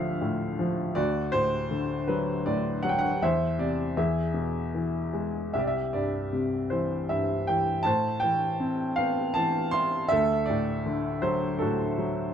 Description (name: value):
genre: classical, lyrical solo piano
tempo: 80 BPM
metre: 3/4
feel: rubato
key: unclear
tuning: A4 = 440 Hz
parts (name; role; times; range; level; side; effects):
- warm upright piano; solo; 0.0-12.3 s; C2 to C6; -25 LUFS; equal; none
room: moderate studio reverb, RT60 0.6 s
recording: dark, warm production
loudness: -25 LUFS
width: side -8 dB against mid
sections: 0.0-12.3 A section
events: none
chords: 0.0 Dm; 1.0 D; 3.2 Cadd9/E; 4.0 E; 5.5 C; 7.9 Amadd9; 10.1 D